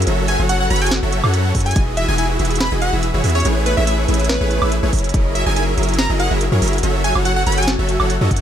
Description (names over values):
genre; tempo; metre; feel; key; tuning
future bass; 142 BPM; 4/4; half-time; unclear; A4 = 440 Hz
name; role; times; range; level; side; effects
Celtic harp; arpeggios; 0.0-8.4 s; C#4 to F#5; -27 LUFS; left 7 dB; sidechain pumping, digital delay
long sustained 808-style bass; bass; 0.0-8.4 s; E1 to F#2; -19 LUFS; equal; sidechain pumping
trap drum kit; drums; 0.0-8.4 s; hi-hat, snare drum, woodblock; -24 LUFS; right 2 dB; none
supersaw chords; riff; 0.1-8.4 s; E3 to G#5; -21 LUFS; right 1 dB; sidechain pumping, digital delay
plucky unison lead; melody; 0.3-7.7 s; B4 to B5; -23 LUFS; right 1 dB; sidechain pumping, digital delay
electronic kick drum; drums; 1.5-1.9, 4.9-5.2, 8.3-8.4 s; none; -18 LUFS; equal; none
room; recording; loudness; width
digital ambience; none; -15 LUFS; side -9 dB against mid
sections
0.0-8.4 A section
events
none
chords
0.1 B7sus4/F#; 1.8 Emaj7; 3.5 Amaj9; 4.9 F#13; 6.8 B7sus4/F#